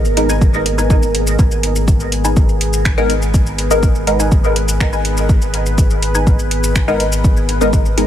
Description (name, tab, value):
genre	dub techno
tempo	123 BPM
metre	4/4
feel	straight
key	G# minor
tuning	A4 = 440 Hz
part	deep dark ambient pad	sustained chords	0.0-8.1 s	B3 to B4	-22 LUFS	equal	chorus, built-in reverb, sidechain pumping
part	warm sub bass	bass	0.0-8.1 s	G#1	-18 LUFS	equal	sidechain pumping
part	deep house drum kit	drums	0.0-8.1 s	finger snaps, hi-hat, shaker	-23 LUFS	equal	none
part	filtered dub chord stab	stabs	0.2-8.1 s	G#3 to A#4	-19 LUFS	left 1 dB	phaser, sidechain pumping, dub echo
part	filtered dub chord stab	riff	0.3-7.0 s	D#4 to G#5	-26 LUFS	left 2 dB	phaser, wide subtle chorus, vintage 12-bit sampler grit, sidechain pumping, dub echo
part	electronic kick drum	drums	0.4-7.8 s	none	-14 LUFS	equal	none
room	little or no reverb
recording	none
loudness	-12 LUFS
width	side -11 dB against mid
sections	0.0-8.1 A section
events	none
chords	0.0 G#madd9